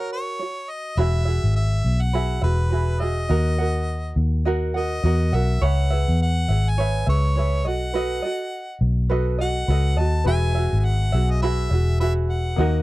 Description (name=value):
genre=acoustic pop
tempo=103 BPM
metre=4/4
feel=swing 60% on 16ths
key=unclear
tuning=A4 = 441 Hz
part: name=clear harmonica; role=melody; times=0.0-12.8 s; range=B4 to A5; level=-29 LUFS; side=equal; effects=none
part: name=tenor ukulele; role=accompaniment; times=0.0-12.8 s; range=F#4 to F#5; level=-26 LUFS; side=right 3 dB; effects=none
part: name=vintage muted fingered electric bass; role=bass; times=1.0-12.8 s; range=E1 to E2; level=-20 LUFS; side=equal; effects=none
part: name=bright upright piano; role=accompaniment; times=10.2-12.8 s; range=A#3 to E5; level=-32 LUFS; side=left 7 dB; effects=none
room=little or no reverb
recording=dry, close 1970s-style studio recording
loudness=-19 LUFS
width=side -18 dB against mid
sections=1.0-12.8 A section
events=none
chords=0.0 F#; 1.0 Eadd9; 3.3 D#m; 5.6 C#m7; 7.7 B7; 10.3 Eadd9